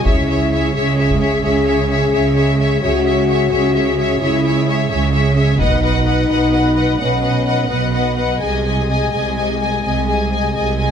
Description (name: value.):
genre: cinematic, epic orchestral film score.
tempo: 86 BPM (dotted quarters).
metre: 12/8.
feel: straight.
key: C# minor.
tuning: A4 = 439 Hz.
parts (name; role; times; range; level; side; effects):
warm symphonic violin section; melody; 0.0-10.9 s; E5 to G#5; -22 LUFS; left 4 dB; none.
warm symphonic violin section; second line; 0.0-10.9 s; C#5 to D#5; -24 LUFS; left 3 dB; none.
warm symphonic viola section; accompaniment; 0.0-10.9 s; G#4 to B4; -25 LUFS; right 1 dB; none.
mellow French horn section; sustained chords; 0.0-10.9 s; G#3 to G#4; -20 LUFS; left 5 dB; none.
rich symphonic double bass section; bass; 0.1-10.9 s; B1 to C#2; -20 LUFS; right 3 dB; none.
warm symphonic cello section; bass; 0.1-10.9 s; B2 to C#3; -21 LUFS; right 3 dB; none.
taiko ensemble; drums; 0.1-1.3, 5.6-6.5 s; none; -21 LUFS; equal; none.
room: moderate recital hall reverb, RT60 1.5 s.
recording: close, detailed microphones.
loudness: -14 LUFS.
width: side -8 dB against mid.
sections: 0.0-10.9 A section.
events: none.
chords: 0.1 C#m; 5.6 B; 8.4 G#/B#.